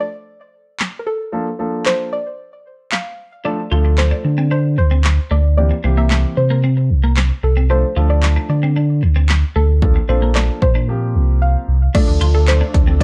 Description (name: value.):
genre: dance-pop.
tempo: 113 BPM.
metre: 4/4.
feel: straight.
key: D minor.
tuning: A4 = 440 Hz.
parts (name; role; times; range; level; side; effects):
soft round pluck; melody; 0.0-13.0 s; A4 to F5; -25 LUFS; equal; chorus, delay.
punchy analog drum machine; drums; 0.8-13.0 s; crash cymbal, handclaps, hi-hat, kick drum, snare drum; -20 LUFS; equal; none.
warm concert grand piano; accompaniment; 1.3-13.0 s; E3 to A4; -26 LUFS; equal; sidechain pumping.
twelve-string electric guitar; riff; 3.5-13.0 s; A3 to F4; -28 LUFS; equal; subtle chorus.
sub bass with octave; bass; 3.7-13.0 s; Bb1 to D3; -16 LUFS; equal; sidechain pumping.
lush unison pad; sustained chords; 11.9-13.0 s; F3 to A4; -31 LUFS; equal; chorus, phaser, sidechain pumping.
unison pluck; arpeggios; 11.9-12.9 s; A3 to A4; -27 LUFS; equal; sidechain pumping, delay.
room: little or no reverb.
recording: dark, warm production.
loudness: -16 LUFS.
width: mono.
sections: 0.0-11.9 A section; 11.9-13.0 B section.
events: silent gap 10.9-11.9.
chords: 0.0 D5; 1.3 Bbmaj7; 3.5 Dm; 5.6 C7; 7.7 Dm; 9.8 Bbmaj7; 10.9 C7sus4; 11.9 Dm.